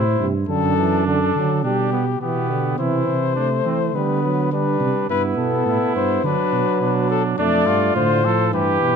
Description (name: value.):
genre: classical, imitative canzona for brass ensemble.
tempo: 104 BPM.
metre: 4/4.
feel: straight.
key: C major.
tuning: A4 = 441 Hz.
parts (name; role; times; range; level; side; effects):
dark trumpet; melody; 0.0-9.0 s; G4 to D5; -22 LUFS; left 11 dB; none.
warm trumpet; second line; 0.0-9.0 s; B3 to A4; -25 LUFS; right 8 dB; none.
mellow trombone; accompaniment; 0.0-9.0 s; C3 to B3; -24 LUFS; right 3 dB; none.
mellow tuba; bass; 0.0-9.0 s; F2 to E3; -22 LUFS; right 4 dB; none.
room: moderate scoring stage reverb, RT60 1.5 s.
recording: none.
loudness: -17 LUFS.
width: side -6 dB against mid.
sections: 0.0-2.8 A section; 2.8-9.0 B section.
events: none.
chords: 0.5 D/F#; 1.6 G/B; 2.8 C; 3.9 G/D; 5.1 Em/G; 6.2 Bm; 7.4 Dm/F.